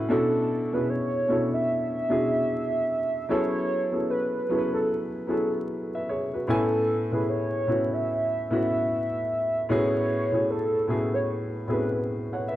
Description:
lo-fi hip hop; 75 BPM; 4/4; swing 59% on 16ths; A major; A4 = 438 Hz
warm upright piano; accompaniment; 0.0-12.6 s; A2 to G#5; -26 LUFS; left 1 dB; low-pass filter
warbly nostalgic lead; melody; 0.1-11.9 s; A4 to E5; -27 LUFS; right 1 dB; chorus, low-pass filter
moderate plate reverb, RT60 2.4 s; dark, warm production, vinyl crackle; -24 LUFS; side -14 dB against mid
0.0-12.6 A section
0.1 Bm11; 3.3 F#m11; 6.5 Amaj7; 9.7 Amaj13

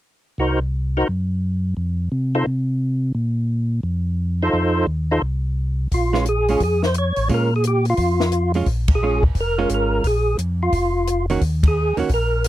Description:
soul jazz organ trio; 175 BPM; 4/4; swing 64% on 8ths; Bb minor from 5.9 s; A4 = 440 Hz
percussive tonewheel organ; melody; 0.4-12.5 s; Eb4 to Db5; -20 LUFS; equal; slow rotary speaker, overdrive, chorus vibrato
mellow tonewheel organ; bass; 0.4-12.5 s; F1 to C3; -21 LUFS; equal; stopped rotary speaker
compact cocktail drum kit; drums; 5.9-12.5 s; hi-hat, kick drum, ride cymbal, snare drum; -21 LUFS; equal
hollow-body jazz guitar; accompaniment; 6.1-12.1 s; Eb3 to Gb4; -22 LUFS; right 5 dB
little or no reverb; dry, close 1970s-style studio recording; -18 LUFS; side -14 dB against mid
0.4-5.9 A section; 5.9-12.5 B section
band accent 8.8, 11.6
0.4 Cm7b5; 1.8 F5; 3.2 Bb5; 4.5 F7; 5.9 Bbm7; 11.4 Eb5

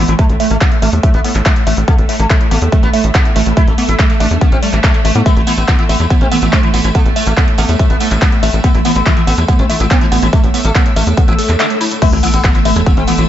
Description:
psychedelic trance; 142 BPM; 4/4; straight; A4 = 438 Hz
sitar; melody; 0.0-13.2 s; A2 to E4; -20 LUFS; left 2 dB; phaser, sidechain pumping, digital delay
pulsing gated texture; sustained chords; 0.0-13.3 s; A3; -21 LUFS; right 1 dB; chorus, built-in reverb, sidechain pumping
woody wave-folded pluck; riff; 0.0-13.1 s; G3 to A4; -19 LUFS; moving between left 6 dB and right 8 dB; chorus, auto-pan, sidechain pumping, digital delay
tight sequencer bass; bass; 0.0-13.3 s; A1 to A2; -14 LUFS; equal
warm studio string section; texture; 0.0-13.3 s; A3 to E6; -26 LUFS; equal
big-room dance drum kit; drums; 0.1-13.3 s; crash cymbal, handclaps, hi-hat; -20 LUFS; equal
electronic kick drum; drums; 0.2-12.9 s; -12 LUFS; equal
tambourine; percussion; 5.3-13.3 s; -28 LUFS; right 6 dB
swell and sub drop; sound effects; 11.3-13.3 s; -20 LUFS; equal
little or no reverb; nothing above 7.8 kHz; -10 LUFS; side -11 dB against mid
0.0-12.0 A section; 12.0-13.3 B section
swell 11.3-12.0; break 11.6-12.0; drop 12.0-13.3; impact 12.0-13.3
0.0 A5

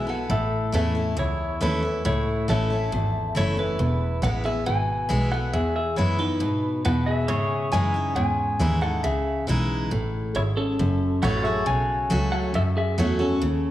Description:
country; 137 BPM; 4/4; straight; A4 = 439 Hz
clean electric guitar; melody; 0.0-13.7 s; C#4 to G#5; -26 LUFS; left 1 dB
picked steel-string acoustic guitar; accompaniment; 0.0-13.7 s; E2 to F#4; -26 LUFS; equal
warm double bass; bass; 0.0-13.7 s; E1 to G#2; -26 LUFS; equal
pedal steel guitar; sustained chords; 7.3-13.7 s; C#4 to C#5; -33 LUFS; left 1 dB
moderate recital hall reverb, RT60 1.5 s; dark, warm production; -21 LUFS; side -13 dB against mid
0.3-13.7 A section
0.3 A; 3.8 E; 7.3 C#madd9; 10.8 F#m

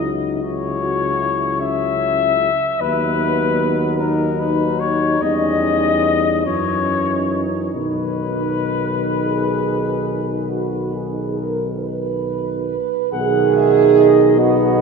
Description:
classical, hymn-like piece for brass band; 44-51 BPM (dotted quarters); 12/8; rubato; B major; A4 = 440 Hz
warm flugelhorn; melody; 0.0-14.8 s; A#4 to F#5; -21 LUFS; left 6 dB
warm French horn section; second line; 0.0-14.8 s; C#4 to B4; -21 LUFS; right 9 dB
warm euphonium; accompaniment; 0.0-14.8 s; B3 to F#4; -24 LUFS; left 4 dB
warm trombone; accompaniment; 0.0-14.8 s; D#3 to B3; -26 LUFS; right 2 dB
mellow tuba; bass; 0.0-14.8 s; B1 to F#2; -24 LUFS; left 1 dB
wet church reverb, RT60 3.7 s; minimal, uncompressed stereo recording; -16 LUFS; side -5 dB against mid
0.0-13.1 A section; 13.1-14.8 B section
0.0 F#7(no3)/C#; 2.8 B/D#; 5.2 C#dim/E; 6.5 F#5; 7.8 B

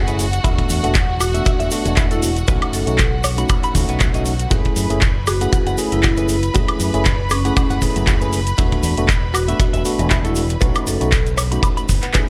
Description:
nu-disco, nu disco; 118 BPM; 4/4; swing 55% on 16ths; F# minor; A4 = 440 Hz
tine electric piano; accompaniment; 0.0-12.3 s; A3 to G#4; -26 LUFS; equal; sidechain pumping, slapback echo
clear symphonic string section; sustained chords; 0.0-12.3 s; F#4 to B5; -31 LUFS; equal; sidechain pumping
fingered electric bass with an envelope filter; bass; 0.0-12.0 s; E1 to F#2; -24 LUFS; equal
direct-recorded clean electric guitar; riff; 0.1-12.2 s; E3 to B5; -29 LUFS; equal; analog chorus
pop drum kit; drums; 0.1-12.3 s; handclaps, hi-hat, woodblock; -26 LUFS; equal; overdrive
tube shaker; percussion; 0.1-12.2 s; -33 LUFS; equal
kick drum; drums; 0.4-12.3 s; -22 LUFS; equal
vibraphone with medium hard mallets; melody; 1.2-11.3 s; C#4 to A4; -28 LUFS; equal; tape echo
small room ambience; -18 LUFS; mono
0.0-12.3 A section
0.4 E9sus4; 2.5 B7; 4.5 F#m7; 8.6 E9sus4; 10.6 B7

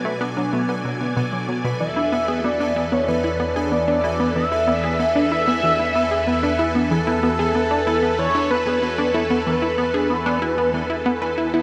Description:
ambient, sequencer-driven space music; 94 BPM; 4/4; straight; A4 = 440 Hz
phased string machine; sustained chords; 0.0-11.6 s; E2 to G#5; -29 LUFS; equal; ensemble chorus, phaser
mellow electric guitar; arpeggios; 0.0-11.6 s; B3 to B4; -29 LUFS; equal; tape echo
tight sequenced synth; riff; 0.0-11.6 s; B2 to B4; -26 LUFS; equal; chorus, tape echo
pulsing gated texture; texture; 0.0-11.6 s; A4 to G#5; -36 LUFS; equal; chorus, built-in reverb
pulse-width lead; melody; 1.8-11.3 s; A4 to E5; -24 LUFS; equal; chorus, phaser, tape echo
wet huge ambient reverb, RT60 7.2 s; -20 LUFS; mono
0.0-11.6 A section
fade-in on synth texture 0.0-11.6
0.0 Bm7; 1.8 Esus4

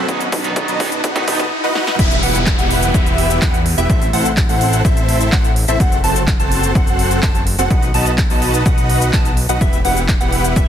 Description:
EDM, festival progressive house; 126 BPM; 4/4; straight; E harmonic minor; A4 = 440 Hz
electric guitar at the edge of break-up; accompaniment; 0.0-1.4 s; D#3 to D#4; -24 LUFS; right 3 dB; harmonic tremolo, sidechain pumping, dub echo
dense compressed supersaw; riff; 0.0-10.7 s; B3 to A5; -20 LUFS; equal; sidechain pumping, dub echo
fat analog bass; bass; 0.0-10.7 s; E1 to E2; -20 LUFS; equal; tube saturation, sidechain pumping
riser and downlifter; sound effects; 0.0-5.8 s; -23 LUFS; right 1 dB
big-room dance drum kit; drums; 0.1-10.7 s; crash cymbal, handclaps, hi-hat, shaker, snare drum; -23 LUFS; equal; overdrive
electronic kick drum; drums; 0.1-10.7 s; -17 LUFS; equal; overdrive, high-pass filter on kick, high-pass filter on room
plucky unison lead; arpeggios; 2.0-10.7 s; E5 to A5; -23 LUFS; equal; sidechain pumping, dub echo
digital ambience; dense, heavily limited modern master, high-pass filter; -13 LUFS; side -10 dB against mid
0.0-2.0 A section; 2.0-10.7 B section
build-up 0.0-2.0; drum fill 0.0-1.5, 1.8; riser 0.0-2.0; drop 2.0-10.7
0.1 B; 2.0 Em; 3.9 Am; 5.8 F#dim; 7.7 B; 9.6 Em

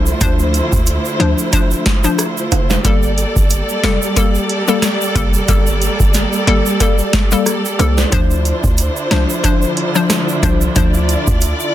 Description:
dancehall; 91 BPM; 4/4; swing 56% on 16ths; D minor; A4 = 441 Hz
hollow square pluck; accompaniment; 0.0-11.7 s; F3 to C5; -18 LUFS; left 5 dB; chorus, sidechain pumping
warm studio string section; sustained chords; 0.0-11.7 s; D3 to D5; -19 LUFS; right 1 dB; sidechain pumping
hard-hitting 808-style bass; bass; 0.0-11.5 s; F1 to D2; -17 LUFS; equal
egg shaker and timbales; percussion; 0.1-11.7 s; -24 LUFS; right 8 dB
booming analog drum machine; drums; 0.2-11.6 s; hi-hat, kick drum, rim click, snare drum; -15 LUFS; equal; overdrive
digital ambience; dense, heavily limited modern master; -12 LUFS; side -12 dB against mid
0.0-11.7 A section
0.0 Dm7; 2.8 Gmadd9; 8.1 Dm7

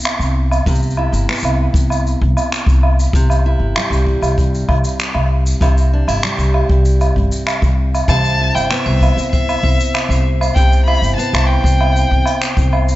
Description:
folktronica; 97 BPM; 4/4; straight; C major; A4 = 440 Hz
picked steel-string acoustic guitar; arpeggios; 0.0-13.0 s; C3 to E4; -23 LUFS; right 1 dB; tape echo
shaker, woodblock and finger snaps; drums; 0.0-13.0 s; -20 LUFS; right 1 dB
upright bass; bass; 0.2-13.0 s; G1 to C2; -16 LUFS; equal
kick drum; drums; 0.7-12.7 s; -17 LUFS; equal
rich violin; melody; 8.1-12.7 s; E5 to B5; -20 LUFS; left 1 dB; tape echo
vibraphone with hard mallets; second line; 8.1-13.0 s; C5; -25 LUFS; left 2 dB; tape echo
little or no reverb; nothing above 7.8 kHz; -12 LUFS; side -16 dB against mid
0.0-13.0 A section
0.0 Cmaj7; 3.1 C/G; 8.1 Cmaj7

